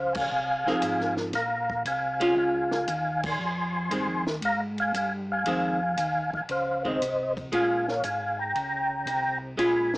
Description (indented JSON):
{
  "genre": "soul jazz organ trio",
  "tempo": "116 BPM",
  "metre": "4/4",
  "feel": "swing 69% on 8ths",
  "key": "F minor",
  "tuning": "A4 = 441 Hz",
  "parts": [
    { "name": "percussive tonewheel organ", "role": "melody", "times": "0.0-10.0 s", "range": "C5 to C6", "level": "-27 LUFS", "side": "equal", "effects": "slow rotary speaker, chorus vibrato" },
    { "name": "tonewheel organ", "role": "bass", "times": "0.0-10.0 s", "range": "Ab1 to Ab2", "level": "-35 LUFS", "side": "equal", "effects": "chorus vibrato, slow rotary speaker" },
    { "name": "compact cocktail drum kit", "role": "drums", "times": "0.1-10.0 s", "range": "crash cymbal, hi-hat, kick drum, ride cymbal, snare drum", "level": "-36 LUFS", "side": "equal", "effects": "none" },
    { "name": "archtop guitar, miked and amplified", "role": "accompaniment", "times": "0.7-9.9 s", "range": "Eb3 to Ab4", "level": "-26 LUFS", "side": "equal", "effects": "none" }
  ],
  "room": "moderate club reverb, RT60 0.6 s",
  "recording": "small speaker sound",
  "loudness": "-24 LUFS",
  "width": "side -20 dB against mid",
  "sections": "0.0-10.0 A section",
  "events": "band accent 0.1, 3.1",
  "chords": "0.0 Fm7; 1.3 Bbm7; 3.4 Fm7; 7.5 Bbm7"
}